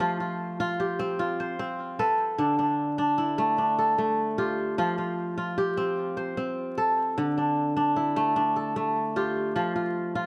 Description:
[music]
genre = west african traditional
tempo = 100 BPM (dotted quarters)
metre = 12/8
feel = straight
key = D dorian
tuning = A4 = 440 Hz
[part]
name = kora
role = solo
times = 0.0-10.3 s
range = D3 to C5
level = -27 LUFS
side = equal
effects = tape echo
[sound]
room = moderate spring reverb, RT60 2.5 s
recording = dark, warm production, vinyl crackle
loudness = -27 LUFS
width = mono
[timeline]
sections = 0.0-10.3 A section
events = none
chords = 0.0 F; 2.4 Dm; 4.8 F; 7.2 Dm; 9.6 F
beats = | 0.00 0.59 1.19 1.79 | 2.39 2.99 3.58 4.18 | 4.78 5.38 5.98 6.57 | 7.17 7.77 8.37 8.96 | 9.56 10.16

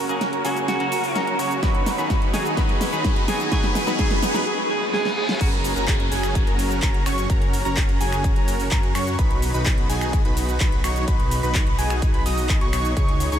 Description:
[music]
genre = EDM, festival progressive house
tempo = 127 BPM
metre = 4/4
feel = straight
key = unclear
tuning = A4 = 441 Hz
[part]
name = plucky unison lead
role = arpeggios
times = 0.0-13.4 s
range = G#5 to D#6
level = -29 LUFS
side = equal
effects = vintage 12-bit sampler grit, sidechain pumping, diffuse ambient delay
[part]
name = dense compressed supersaw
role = riff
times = 0.0-13.4 s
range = C#4 to D#5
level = -27 LUFS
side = right 1 dB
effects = sidechain pumping, low-pass filter, diffuse ambient delay
[part]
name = wide detuned saw bass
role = bass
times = 0.0-13.4 s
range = F#1 to F#2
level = -27 LUFS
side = equal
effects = chorus, sidechain pumping, high-pass filter
[part]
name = riser, reverse cymbal and downlifter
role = sound effects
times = 1.6-9.2 s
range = none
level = -33 LUFS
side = equal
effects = none
[part]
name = clean electric guitar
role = accompaniment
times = 0.1-4.4 s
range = C#3 to G#4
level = -31 LUFS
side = left 1 dB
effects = sidechain pumping, diffuse ambient delay
[part]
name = pop drum kit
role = drums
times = 0.1-13.4 s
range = crash cymbal, finger snaps, handclaps, hi-hat, shaker, snare drum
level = -28 LUFS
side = equal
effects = overdrive
[part]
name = bright alto saxophone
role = melody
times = 0.4-5.5 s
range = F#4 to G#4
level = -28 LUFS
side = right 1 dB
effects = diffuse ambient delay
[part]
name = electronic kick drum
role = drums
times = 1.6-13.1 s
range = none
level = -21 LUFS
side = equal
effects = none
[sound]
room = moderate huge ambient reverb, RT60 8.3 s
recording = dreamy mix soaked in reverb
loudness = -19 LUFS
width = side -9 dB against mid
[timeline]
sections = 0.0-5.4 A section; 5.4-13.4 B section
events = build-up 0.0-5.4; drum fill 0.0-4.5, 4.9-5.4; filter sweep on digital synth lead 0.0-5.4; riser 1.6-4.5; reverse cymbal 4.5-5.4; drop 5.4-13.4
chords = 0.0 F#; 1.6 B; 5.4 F#; 9.2 B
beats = 0.21 0.68 1.16 | 1.63 2.10 2.57 3.05 | 3.52 3.99 4.46 4.93 | 5.41 5.88 6.35 6.83 | 7.30 7.77 8.24 8.71 | 9.19 9.66 10.13 10.61 | 11.08 11.55 12.02 12.49 | 12.97

